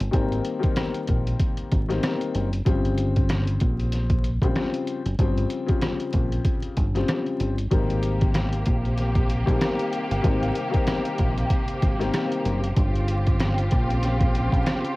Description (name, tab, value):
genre	hip hop, boom-bap hip-hop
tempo	95 BPM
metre	4/4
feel	swing 58% on 16ths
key	Ab major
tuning	A4 = 442 Hz
part	deep dub fingered electric bass	bass	0.0-14.6 s	Gb1 to Bb1	-25 LUFS	equal	none
part	trip hop sampler-style drum kit	drums	0.0-15.0 s	hi-hat, kick drum, rim click, snare drum	-24 LUFS	equal	cassette tape
part	dark concert grand piano	accompaniment	0.1-12.6 s	Db3 to C4	-28 LUFS	left 4 dB	high-pass filter, low-pass filter
part	rich studio string section	sustained chords	7.7-15.0 s	C3 to G4	-29 LUFS	equal	high-pass filter, low-pass filter
room	light reverb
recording	home recording on cassette, vinyl crackle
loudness	-21 LUFS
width	side -20 dB against mid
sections	0.0-15.0 A section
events	none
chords	0.0 Abmaj9; 2.7 Bbm69; 7.7 Abmaj9; 12.8 Bbm69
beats	| 0.14 0.77 1.40 2.03 | 2.66 3.30 3.93 4.56 | 5.19 5.82 6.45 7.08 | 7.72 8.35 8.98 9.61 | 10.24 10.88 11.51 12.14 | 12.77 13.40 14.03 14.66